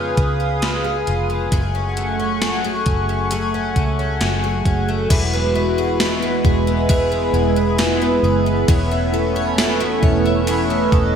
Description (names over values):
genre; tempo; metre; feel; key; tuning
dream pop; 67 BPM; 4/4; straight; E major; A4 = 440 Hz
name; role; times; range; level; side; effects
phased analog pad; sustained chords; 0.0-11.2 s; G#3 to D#6; -20 LUFS; right 1 dB; phaser, chorus
picked twelve-string acoustic guitar; arpeggios; 0.0-11.2 s; F#2 to C#5; -22 LUFS; left 1 dB; wide subtle chorus, digital delay
vintage muted fingered electric bass; bass; 0.0-11.2 s; E1 to E#2; -22 LUFS; equal; none
gated 80s digital drum machine; drums; 0.2-11.1 s; crash cymbal, hi-hat, kick drum, ride cymbal, snare drum, tambourine; -20 LUFS; equal; gated reverb, gated reverb snare, overdrive
room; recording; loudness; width
moderate lush hall reverb, RT60 2.7 s; big arena sound; -16 LUFS; side -7 dB against mid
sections
0.0-5.1 A section; 5.1-11.2 B section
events
none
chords
0.0 C#7; 1.5 F#madd9; 5.1 Eadd9; 8.7 Aadd9/E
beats
0.62 | 1.52 2.42 3.31 4.21 | 5.10 6.00 6.89 7.79 | 8.69 9.58 10.48